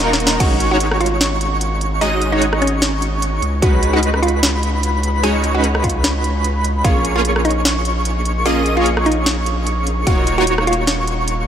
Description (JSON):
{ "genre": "future bass", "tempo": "149 BPM", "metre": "4/4", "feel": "swing 55% on 16ths, half-time", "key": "unclear", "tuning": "A4 = 440 Hz", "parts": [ { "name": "mallet-like synth pluck", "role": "melody", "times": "0.0-11.5 s", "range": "Db4 to Ab5", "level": "-23 LUFS", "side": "right 1 dB", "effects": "chorus, phaser, sidechain pumping, diffuse ambient delay" }, { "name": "airy dreamy lead", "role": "arpeggios", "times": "0.0-11.5 s", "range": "Bb5 to Eb6", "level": "-23 LUFS", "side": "equal", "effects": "chorus, sidechain pumping, tape echo" }, { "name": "supersaw stab", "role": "riff", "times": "0.0-11.5 s", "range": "Ab3 to Eb5", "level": "-20 LUFS", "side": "right 1 dB", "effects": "analog chorus, sidechain pumping, tape echo" }, { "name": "saturated sub bass", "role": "bass", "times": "0.0-11.5 s", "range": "Eb1 to Db2", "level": "-20 LUFS", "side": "equal", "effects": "sidechain pumping" }, { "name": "trap drum kit", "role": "drums", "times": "0.0-11.4 s", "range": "crash cymbal, hi-hat, rim click, snare drum", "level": "-21 LUFS", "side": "equal", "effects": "none" }, { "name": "electronic kick drum", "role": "drums", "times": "0.4-0.5, 3.6-6.9, 10.1-10.2 s", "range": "none", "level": "-17 LUFS", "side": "equal", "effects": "none" } ], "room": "moderate cathedral reverb, RT60 4.8 s", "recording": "dreamy mix soaked in reverb", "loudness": "-14 LUFS", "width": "side -9 dB against mid", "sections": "0.0-11.5 A section", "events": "break 0.0-0.4; drum fill 0.0-0.4", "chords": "0.4 Ab7sus4; 3.4 Db9sus4; 6.8 Bbm7; 10.1 Ebm9" }